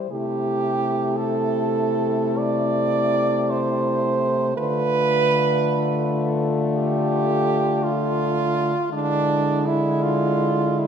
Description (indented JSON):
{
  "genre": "classical, lyrical piece for horn quartet",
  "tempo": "47-58 BPM (dotted quarters)",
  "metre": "12/8",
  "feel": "rubato",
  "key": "A minor",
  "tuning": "A4 = 439 Hz",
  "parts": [
    { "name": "mellow French horn", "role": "melody", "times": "0.0-10.9 s", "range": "E4 to C5", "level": "-28 LUFS", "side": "left 9 dB", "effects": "none" },
    { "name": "mellow French horn", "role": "accompaniment", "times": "0.0-10.9 s", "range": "G#3 to A3", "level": "-27 LUFS", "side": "left 4 dB", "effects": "none" },
    { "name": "clear French horn", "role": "second line", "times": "0.1-10.9 s", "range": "D4 to D5", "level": "-22 LUFS", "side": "right 5 dB", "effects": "none" },
    { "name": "mellow French horn", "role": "bass", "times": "0.1-10.9 s", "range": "C3 to D3", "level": "-26 LUFS", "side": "right 1 dB", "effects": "none" }
  ],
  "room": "moderate scoring stage reverb, RT60 2.1 s",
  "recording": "none",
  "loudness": "-19 LUFS",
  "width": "side -7 dB against mid",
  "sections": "0.0-10.9 A section",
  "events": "none",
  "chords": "0.1 Am/C; 4.6 Bm7b5/D; 8.9 E7/D",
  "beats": "| 0.11 1.17 2.39 3.49 | 4.57 5.65 6.75 7.81 | 8.91 10.02"
}